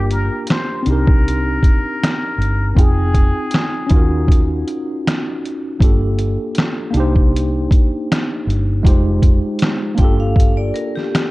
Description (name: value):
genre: lo-fi hip hop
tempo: 79 BPM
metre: 4/4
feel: swing 56% on 16ths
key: G minor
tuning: A4 = 440 Hz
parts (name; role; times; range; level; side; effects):
- trumpet with plunger mute; melody; 0.0-4.5 s; Ab4 to C5; -25 LUFS; left 2 dB; none
- tine electric piano; accompaniment; 0.0-11.3 s; Ab3 to G5; -21 LUFS; equal; fast stereo tremolo, cassette tape
- vintage muted fingered electric bass; bass; 0.0-10.7 s; F1 to Eb2; -18 LUFS; equal; none
- trip hop sampler-style drum kit; drums; 0.1-11.3 s; finger snaps, hi-hat, kick drum, snare drum; -14 LUFS; equal; none
- vibraphone with hard mallets; second line; 10.0-11.3 s; G4 to G5; -25 LUFS; left 4 dB; none
room: light reverb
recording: dark, warm production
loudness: -14 LUFS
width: side -20 dB against mid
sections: 0.0-11.3 A section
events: none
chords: 0.0 Gm7; 0.9 Cm7; 2.8 Fm7; 3.9 Ebm7; 5.8 Gm7; 6.9 Cm7; 8.8 Fm7; 10.0 Gm7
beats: 0.49 1.25 2.01 | 2.77 3.53 4.29 5.04 | 5.80 6.56 7.32 8.08 | 8.84 9.60 10.36 11.12